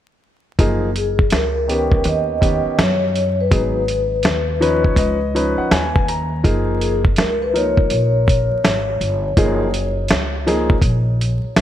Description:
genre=hip hop, jazz-hop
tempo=82 BPM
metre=4/4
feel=swing 64% on 16ths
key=F# major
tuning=A4 = 442 Hz
part: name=warm upright piano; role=accompaniment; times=0.6-10.8 s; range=D#3 to A#5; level=-21 LUFS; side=left 1 dB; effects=none
part: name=upright bass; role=bass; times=0.6-11.6 s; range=F#1 to F#2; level=-21 LUFS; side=equal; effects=none
part: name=dusty soul sampler-style drum kit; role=drums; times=0.6-11.6 s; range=hi-hat, kick drum, snare drum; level=-18 LUFS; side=equal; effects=vintage 12-bit sampler grit
part: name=vibraphone with soft mallets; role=melody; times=1.0-11.5 s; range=G#4 to D#5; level=-21 LUFS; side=left 2 dB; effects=diffuse ambient delay
room=light reverb, small room ambience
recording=vinyl crackle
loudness=-15 LUFS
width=side -11 dB against mid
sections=0.6-11.6 A section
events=upright piano fill 4.3-6.4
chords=0.6 F#maj13; 2.1 D#7alt; 3.5 G#m7; 5.0 C#9; 6.4 F#maj13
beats=| 0.59 1.32 2.06 2.79 | 3.52 4.25 4.98 5.71 | 6.45 7.18 7.91 8.64 | 9.37 10.11 10.84 11.57

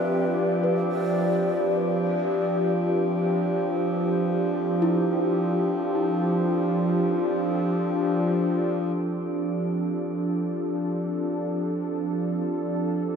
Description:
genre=ambient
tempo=free time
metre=none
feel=none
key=F lydian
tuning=A4 = 438 Hz
part: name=breathy mellow long shakuhachi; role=melody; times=0.0-2.0 s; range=B4 to D5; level=-32 LUFS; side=left 1 dB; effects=shimmer reverb, dub echo
part: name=warm analog pad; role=sustained chords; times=0.0-13.2 s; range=F3 to D5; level=-24 LUFS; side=equal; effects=wide subtle chorus, shimmer reverb
part: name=small celesta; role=arpeggios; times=0.0-10.2 s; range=D4 to B4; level=-33 LUFS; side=equal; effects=none
part: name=pedal harmonium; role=drone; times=0.0-8.9 s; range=F3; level=-30 LUFS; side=left 4 dB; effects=none
part: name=drifting glass-harmonics texture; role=texture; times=0.0-8.8 s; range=C4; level=-36 LUFS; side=right 2 dB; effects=chorus, built-in reverb, shimmer reverb
room=wet echo chamber reverb, RT60 2.2 s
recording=echo-heavy mix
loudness=-22 LUFS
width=side -6 dB against mid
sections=0.0-8.8 A section; 8.8-13.2 B section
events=fade-in on synth texture 0.0-8.8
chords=0.0 Dm13/F; 2.0 Fmaj9#11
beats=free time

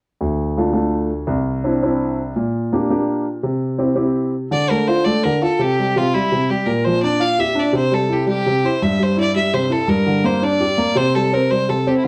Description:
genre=celtic folk, Celtic jig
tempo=112 BPM (dotted quarters)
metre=6/8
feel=straight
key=unclear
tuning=A4 = 440 Hz
part: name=warm grand piano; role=accompaniment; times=0.2-12.1 s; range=C2 to G4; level=-20 LUFS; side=equal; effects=none
part: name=bright fiddle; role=melody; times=4.5-12.1 s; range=E4 to F5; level=-22 LUFS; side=equal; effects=slapback echo
room=moderate studio reverb, RT60 0.6 s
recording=worn, warbling old tape, cassette tape, warbly pitch drift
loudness=-18 LUFS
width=mono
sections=0.2-4.5 A section; 4.5-12.1 B section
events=none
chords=0.2 Dm; 1.3 Cadd9; 2.4 Bb6; 3.4 C; 4.5 Dm; 5.6 C; 6.7 Bb6; 7.7 C; 9.9 Gm; 11.0 C5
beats=| 0.20 0.73 | 1.27 1.81 | 2.35 2.89 | 3.43 3.96 | 4.50 5.04 | 5.58 6.12 | 6.66 7.19 | 7.73 8.27 | 8.81 9.35 | 9.88 10.42 | 10.96 11.50 | 12.04

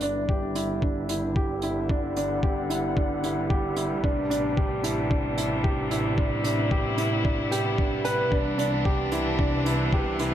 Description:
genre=piano and strings electronica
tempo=112 BPM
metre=4/4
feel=straight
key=unclear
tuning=A4 = 437 Hz
part: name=bright string quartet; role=sustained chords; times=0.0-10.3 s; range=C3 to F#5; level=-30 LUFS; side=left 1 dB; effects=sidechain pumping, low-pass filter
part: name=warm upright piano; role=riff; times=0.0-10.3 s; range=D4 to B4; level=-27 LUFS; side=right 1 dB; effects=digital delay
part: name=warm studio double bass section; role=bass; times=0.0-10.3 s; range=G1 to C2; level=-32 LUFS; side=equal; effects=sidechain pumping
part: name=hi-hat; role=drums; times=0.0-10.3 s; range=none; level=-36 LUFS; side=right 5 dB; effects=none
part: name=electronic kick drum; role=drums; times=0.3-10.0 s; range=none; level=-26 LUFS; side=left 1 dB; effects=none
room=moderate recital hall reverb, RT60 1.5 s, small room ambience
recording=none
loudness=-23 LUFS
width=side -11 dB against mid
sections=0.0-10.3 A section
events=build-up 0.0-10.3; filter sweep on string quartet 0.0-10.3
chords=0.0 G6; 4.0 Am11; 8.3 Cmaj9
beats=0.29 0.83 1.36 | 1.90 2.43 2.97 3.50 | 4.04 4.58 5.11 5.65 | 6.18 6.72 7.25 7.79 | 8.33 8.86 9.40 9.93

